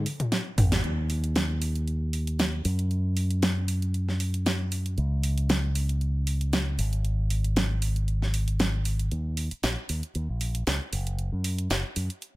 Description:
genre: nu-disco, nu disco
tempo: 116 BPM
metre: 4/4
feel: swing 54% on 16ths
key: Eb minor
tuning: A4 = 440 Hz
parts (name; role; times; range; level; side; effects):
- fingered electric bass with an envelope filter; bass; 0.0-12.1 s; Gb1 to Gb2; -26 LUFS; equal; none
- pop drum kit; drums; 0.1-12.3 s; hi-hat, snare drum, toms; -28 LUFS; equal; high-pass filter on hats, high-pass filter on snare, high-pass filter on toms
room: small room reverb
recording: none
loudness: -25 LUFS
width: side -19 dB against mid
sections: 0.8-9.1 A section; 9.1-12.4 B section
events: drum fill 0.0-0.8; band accent 0.7; build-up 9.1-12.4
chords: none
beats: 0.32 | 0.84 1.36 1.88 2.39 | 2.91 3.43 3.94 4.46 | 4.98 5.50 6.01 6.53 | 7.05 7.57 8.08 8.60 | 9.12 9.63 10.15 10.67 | 11.19 11.70 12.22

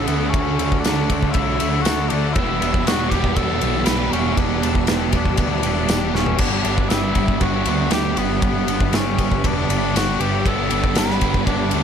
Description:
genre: rock, shoegaze and dream pop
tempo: 118 BPM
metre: 4/4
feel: straight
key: G major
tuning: A4 = 438 Hz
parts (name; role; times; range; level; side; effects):
- mellow cor anglais; melody; 0.0-11.8 s; B3 to B4; -25 LUFS; left 2 dB; tape echo
- string machine, violas; sustained chords; 0.0-11.8 s; G3 to E6; -30 LUFS; right 1 dB; ensemble chorus
- direct-recorded clean electric guitar; arpeggios; 0.0-11.8 s; F#3 to A4; -32 LUFS; right 7 dB; none
- biting overdriven guitar; riff; 0.0-11.8 s; E2 to G4; -24 LUFS; right 10 dB; reverse reverb
- overdriven semi-hollow guitar; riff; 0.0-11.8 s; E2 to G4; -25 LUFS; left 11 dB; analog chorus
- growling picked electric bass; bass; 0.0-11.8 s; E1 to D2; -24 LUFS; equal; overdrive
- loose indie drum kit; drums; 0.1-11.8 s; crash cymbal, kick drum, ride cymbal, snare drum, splash cymbal, toms; -22 LUFS; equal; none
- tambourine; percussion; 0.9-11.1 s; none; -34 LUFS; left 10 dB; none
room: light reverb, small room reverb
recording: none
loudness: -17 LUFS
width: side -8 dB against mid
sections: 0.0-11.8 A section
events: drum fill 6.2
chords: 0.0 Dadd9; 2.4 Em7; 6.4 G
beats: | 0.34 0.84 1.35 1.86 | 2.36 2.87 3.38 3.88 | 4.39 4.89 5.40 5.90 | 6.41 6.92 7.42 7.93 | 8.44 8.94 9.45 9.96 | 10.47 10.97 11.48

